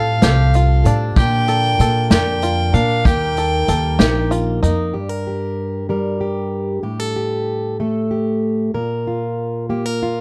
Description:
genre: indie folk with a building arrangement.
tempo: 63 BPM (dotted quarters).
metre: 6/8.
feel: straight.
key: G minor.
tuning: A4 = 440 Hz.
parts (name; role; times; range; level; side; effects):
warm fiddle; melody; 0.0-4.3 s; F5 to G5; -23 LUFS; equal; none.
picked old ladder-braced acoustic guitar; accompaniment; 0.0-5.0 s; A2 to Bb4; -25 LUFS; equal; none.
bluegrass banjo; arpeggios; 0.0-4.9 s; D4 to A4; -27 LUFS; equal; none.
upright bass; bass; 0.0-4.9 s; Bb1 to Bb2; -19 LUFS; equal; none.
unplugged drum kit; drums; 0.2-4.8 s; hi-hat, kick drum, snare drum; -19 LUFS; equal; none.
fingerpicked plugged-in steel-string acoustic guitar; accompaniment; 4.9-10.2 s; G2 to Bb4; -22 LUFS; equal; none.
room: little or no reverb.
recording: none.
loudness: -18 LUFS.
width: mono.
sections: 0.0-4.9 A section; 4.9-10.2 B section.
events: none.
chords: 0.0 Fadd9; 1.2 Bb; 3.0 Eb; 4.9 Gm; 6.8 Gsus2/A; 8.7 Bb5.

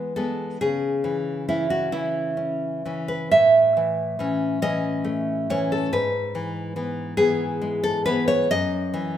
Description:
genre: romantic piece for solo classical guitar.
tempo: 46 BPM (dotted quarters).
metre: 6/8.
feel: uneven beats, rubato.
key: E major.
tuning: A4 = 439 Hz.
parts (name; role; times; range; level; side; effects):
nylon-string guitar; solo; 0.0-9.2 s; F#2 to E5; -21 LUFS; equal; none.
room: moderate recital hall reverb, RT60 1.4 s.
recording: minimal, uncompressed stereo recording.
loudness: -21 LUFS.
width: side -10 dB against mid.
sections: 0.0-9.2 A section.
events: none.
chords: 0.0 E; 0.6 C#m; 3.3 A; 5.9 E/G#; 8.5 F#7(no3).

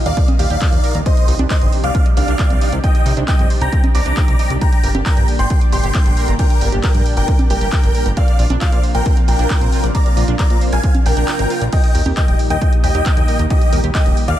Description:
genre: uplifting trance.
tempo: 135 BPM.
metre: 4/4.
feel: straight.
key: Eb major.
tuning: A4 = 441 Hz.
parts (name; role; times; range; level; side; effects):
analog string pad; sustained chords; 0.0-14.4 s; Bb2 to G4; -25 LUFS; equal; ensemble chorus, sidechain pumping.
downlifter; sound effects; 0.0-1.1 s; none; barely audible; none; none.
big supersaw lead; melody; 0.1-14.4 s; G4 to D6; -22 LUFS; equal; phaser, sidechain pumping, digital delay.
dark baby grand piano; second line; 0.1-14.4 s; Eb5 to D6; -29 LUFS; left 2 dB; sidechain pumping, dub echo.
analog pluck; arpeggios; 0.1-14.4 s; C4 to Eb6; -28 LUFS; right 6 dB; chorus, sidechain pumping, dub echo.
fat analog bass; bass; 0.1-14.3 s; Eb1 to Bb2; -19 LUFS; equal; sidechain pumping.
punchy analog drum machine; drums; 0.1-14.4 s; congas, crash cymbal, handclaps, hi-hat; -26 LUFS; right 2 dB; none.
electronic kick drum; drums; 0.2-14.0 s; none; -14 LUFS; equal; none.
room: little or no reverb.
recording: none.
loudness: -13 LUFS.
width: side -12 dB against mid.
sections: 0.0-14.4 A section.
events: break 11.3-11.7.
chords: 0.0 Eb; 1.1 Cmadd9; 4.6 Gm; 8.2 Bbadd9; 11.7 Eb.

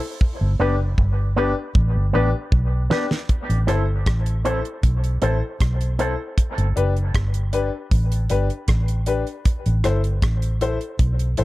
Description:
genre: dub reggae.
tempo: 78 BPM.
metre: 4/4.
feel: straight.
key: A dorian.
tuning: A4 = 440 Hz.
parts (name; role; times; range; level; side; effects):
damped 70s drum kit; drums; 0.2-11.4 s; hi-hat, kick drum, rim click, snare drum; -20 LUFS; equal; none.
vintage muted fingered electric bass; bass; 0.4-11.4 s; F#1 to B1; -20 LUFS; equal; none.
electric guitar with an envelope filter; accompaniment; 0.6-6.1 s; B3 to A4; -29 LUFS; right 3 dB; dub echo.
clear upright piano; stabs; 0.6-11.4 s; D4 to C5; -26 LUFS; left 5 dB; dub echo.
room: small room ambience.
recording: dark, warm production.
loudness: -18 LUFS.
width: side -18 dB against mid.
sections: 0.0-3.3 A section; 3.3-11.4 B section.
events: drum fill 0.2-3.3.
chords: 0.2 G; 3.3 Am; 6.4 G; 9.5 Am.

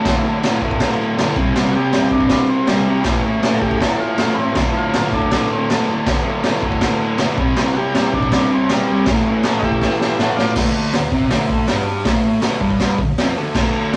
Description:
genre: garage rock duo or trio.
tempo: 160 BPM.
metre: 4/4.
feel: straight.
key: unclear.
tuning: A4 = 444 Hz.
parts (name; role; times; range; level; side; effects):
overdriven combo organ; melody; 0.0-10.6 s; G3 to F#5; -25 LUFS; equal; none.
fuzz guitar; riff; 0.0-14.0 s; D2 to C4; -21 LUFS; equal; distortion.
raw garage drum kit; drums; 0.1-14.0 s; crash cymbal, hi-hat, kick drum, snare drum; -21 LUFS; equal; vintage 12-bit sampler grit.
room: wet studio ambience, RT60 0.5 s.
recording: rough rehearsal-room recording, tube saturation, cassette tape.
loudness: -17 LUFS.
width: mono.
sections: 0.0-10.6 A section; 10.6-14.0 B section.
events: drum fill 9.8-10.6.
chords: 0.0 D5; 1.4 C5; 3.1 A5; 4.6 D5; 7.4 C5; 9.1 A5; 10.6 D5.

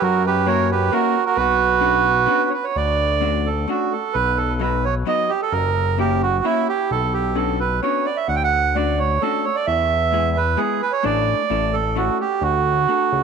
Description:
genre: musette waltz.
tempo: 131 BPM.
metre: 3/4.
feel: rubato.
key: D major.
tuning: A4 = 440 Hz.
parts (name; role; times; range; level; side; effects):
accordion; melody; 0.0-13.2 s; E4 to G5; -19 LUFS; right 8 dB; none.
fat analog bass; bass; 0.0-13.2 s; F#1 to F#2; -22 LUFS; left 2 dB; none.
vintage hollow-body jazz guitar; accompaniment; 0.5-13.1 s; F#3 to A4; -26 LUFS; left 14 dB; none.
room: wet spring reverb, RT60 2.6 s.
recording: 1960s-style stereo with parts hard left and right.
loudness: -17 LUFS.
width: side -6 dB against mid.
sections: 0.0-2.8 A section; 2.8-13.2 B section.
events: none.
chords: 0.0 F#7; 1.4 Bmadd9; 2.8 Dmaj7; 4.2 B; 5.5 F#7; 6.9 Bmadd9; 8.3 Dmaj7; 9.7 E; 11.0 Asus4; 11.5 A; 12.4 D.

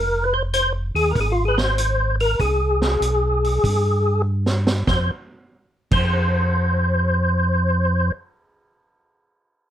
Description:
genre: soul jazz organ trio.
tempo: 97 BPM.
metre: 4/4.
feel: swing 68% on 8ths.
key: F minor.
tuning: A4 = 443 Hz.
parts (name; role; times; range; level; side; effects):
percussive tonewheel organ; melody; 0.0-8.1 s; F4 to C5; -21 LUFS; left 1 dB; slow rotary speaker, overdrive, chorus vibrato.
mellow tonewheel organ; bass; 0.0-8.1 s; F1 to G2; -21 LUFS; equal; overdrive, chorus vibrato, slow rotary speaker.
vintage drum kit; drums; 0.5-6.0 s; crash cymbal, hi-hat, kick drum, snare drum; -25 LUFS; right 2 dB; none.
room: light reverb.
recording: close, detailed microphones.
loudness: -18 LUFS.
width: side -10 dB against mid.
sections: 0.0-4.9 A section; 4.9-7.4 B section.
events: drum fill 4.3-4.9.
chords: 0.0 Fm7; 2.4 C5; 4.9 F5.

